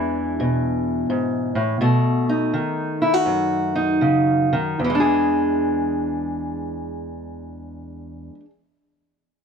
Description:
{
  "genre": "acoustic country blues, solo or duo",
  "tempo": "76-88 BPM",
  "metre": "4/4",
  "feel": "swing 66% on 8ths",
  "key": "E mixolydian",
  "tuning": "A4 = 441 Hz",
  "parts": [
    { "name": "fingerpicked steel-string acoustic guitar", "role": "solo", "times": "0.0-8.5 s", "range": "E2 to G#4", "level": "-19 LUFS", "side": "equal", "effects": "none" }
  ],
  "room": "small room reverb",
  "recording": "dry, close 1970s-style studio recording",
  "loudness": "-18 LUFS",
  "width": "side -6 dB against mid",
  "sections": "0.0-4.8 A section; 4.8-8.0 B section",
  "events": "slowing down 0.0-4.8",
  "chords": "0.0 E7; 1.8 B7; 4.8 E7"
}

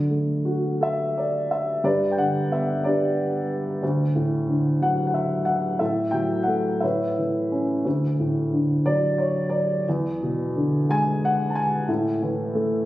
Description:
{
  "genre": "classical, lyrical solo piano",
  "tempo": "60 BPM (dotted quarters)",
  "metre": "6/8",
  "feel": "rubato",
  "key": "D major",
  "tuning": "A4 = 440 Hz",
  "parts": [
    { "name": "dark upright piano", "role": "solo", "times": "0.0-12.9 s", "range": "D2 to A5", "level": "-21 LUFS", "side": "equal", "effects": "none" }
  ],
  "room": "light reverb",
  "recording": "recorded on a phone in the room, studio reverb, compression",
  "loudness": "-21 LUFS",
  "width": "side -15 dB against mid",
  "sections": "0.0-12.9 A section",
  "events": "none",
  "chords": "0.0 D; 1.8 G; 3.8 D; 5.8 F#m7/A; 6.8 Aadd9; 7.9 D; 9.9 E7; 11.9 A5"
}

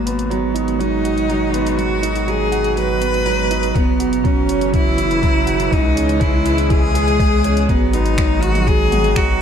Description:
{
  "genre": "piano and strings electronica",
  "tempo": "122 BPM",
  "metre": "4/4",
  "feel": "straight",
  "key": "G# minor",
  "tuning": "A4 = 444 Hz",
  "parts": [
    { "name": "clear cello", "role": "melody", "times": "0.0-9.4 s", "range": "A#3 to B4", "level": "-19 LUFS", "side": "equal", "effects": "none" },
    { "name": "dark studio string section", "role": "sustained chords", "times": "0.0-9.4 s", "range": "B2 to F#4", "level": "-25 LUFS", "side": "left 1 dB", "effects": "none" },
    { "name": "round analog bass", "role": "bass", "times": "0.0-9.4 s", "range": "F#1 to C#2", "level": "-22 LUFS", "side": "left 1 dB", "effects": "sidechain pumping" },
    { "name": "bright grand piano", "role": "riff", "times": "0.1-9.4 s", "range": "F#3 to G#4", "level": "-21 LUFS", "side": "right 4 dB", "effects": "none" },
    { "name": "deep house drum kit", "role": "drums", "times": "0.1-9.3 s", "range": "finger snaps, hi-hat, toms", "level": "-29 LUFS", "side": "right 1 dB", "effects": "overdrive" },
    { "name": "electronic kick drum", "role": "drums", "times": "3.8-9.3 s", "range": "none", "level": "-18 LUFS", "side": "left 1 dB", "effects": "none" }
  ],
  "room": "moderate echo chamber reverb, RT60 1.5 s, studio ambience",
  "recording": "dark, warm production",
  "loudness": "-14 LUFS",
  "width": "side -8 dB against mid",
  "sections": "0.0-7.7 A section; 7.7-9.4 B section",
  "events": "build-up 0.0-7.7; drop 7.7-9.4",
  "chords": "0.0 G#m7; 3.8 F#7sus4; 5.7 C#m7; 7.7 G#m7"
}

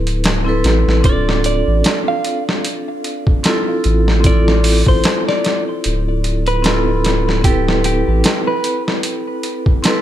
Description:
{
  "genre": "trip hop",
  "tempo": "75 BPM",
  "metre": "4/4",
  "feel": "swing 56% on 16ths",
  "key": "D dorian",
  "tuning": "A4 = 437 Hz",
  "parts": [
    { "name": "vibraphone with medium mallets", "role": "accompaniment", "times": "0.0-10.0 s", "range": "C4 to B4", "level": "-19 LUFS", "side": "equal", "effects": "harmonic tremolo, tape echo" },
    { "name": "round analog bass", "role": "bass", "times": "0.0-8.2 s", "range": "D1 to A1", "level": "-16 LUFS", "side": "equal", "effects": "none" },
    { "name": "boom bap sampler-style drum kit", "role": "drums", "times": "0.1-10.0 s", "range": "hi-hat, kick drum, snare drum", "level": "-17 LUFS", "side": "equal", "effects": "none" },
    { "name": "clean electric guitar", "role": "melody", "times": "1.1-8.8 s", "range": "G4 to F5", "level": "-22 LUFS", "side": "right 1 dB", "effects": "phaser, tape echo" }
  ],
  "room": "little or no reverb",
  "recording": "none",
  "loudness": "-13 LUFS",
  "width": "side -12 dB against mid",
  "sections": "0.0-10.0 A section",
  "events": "none",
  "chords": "0.0 Amadd9/D; 1.0 Dm7; 7.4 Amadd9/D"
}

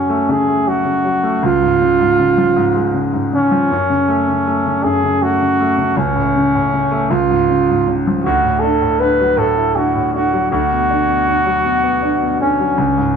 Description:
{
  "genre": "pop",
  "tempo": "53 BPM (dotted quarters)",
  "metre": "6/8",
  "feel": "straight",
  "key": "F# minor",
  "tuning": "A4 = 443 Hz",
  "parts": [
    { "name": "breathy flugelhorn", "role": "melody", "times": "0.0-13.2 s", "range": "C#4 to B4", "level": "-15 LUFS", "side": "right 2 dB", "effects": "none" },
    { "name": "clear concert grand piano", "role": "accompaniment", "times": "0.0-13.2 s", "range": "C#2 to E4", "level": "-16 LUFS", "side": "left 1 dB", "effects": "none" }
  ],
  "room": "moderate echo chamber reverb, RT60 1.5 s",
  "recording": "none",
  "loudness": "-13 LUFS",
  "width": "side -6 dB against mid",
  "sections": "0.0-13.2 A section",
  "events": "none",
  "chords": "0.0 F#m; 1.4 C#; 3.7 F#m; 6.0 A/C#; 7.1 C#; 8.2 Dadd9; 10.5 Bm/D"
}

